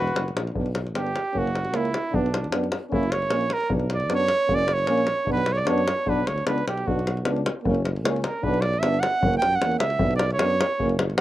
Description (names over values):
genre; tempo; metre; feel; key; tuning
balkan folk, Balkan brass band; 152 BPM; 2/4; swing 53% on 16ths; B harmonic minor; A4 = 440 Hz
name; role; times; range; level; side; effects
warm flugelhorn; second line; 0.0-11.2 s; D4 to G5; -25 LUFS; right 3 dB; slapback echo
mellow tuba; bass; 0.0-11.2 s; E1 to F#2; -28 LUFS; equal; none
davul; percussion; 0.1-11.2 s; none; -27 LUFS; left 2 dB; slapback echo
mellow euphonium; accompaniment; 0.5-11.0 s; A#3 to B3; -29 LUFS; right 4 dB; none
warm French horn; accompaniment; 0.5-11.2 s; C#4 to D4; -31 LUFS; left 5 dB; slapback echo
room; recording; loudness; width
little or no reverb; recorded outdoors, with no room sound; -21 LUFS; side -14 dB against mid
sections
0.6-11.2 A section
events
flugelhorn solo 0.6-11.2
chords
0.0 B5; 0.6 Bm; 1.3 F#; 2.1 Bm; 2.9 F#; 3.7 Bm; 4.5 F#; 5.3 Bm; 7.6 F#; 8.4 Bm; 9.2 F#; 10.0 Bm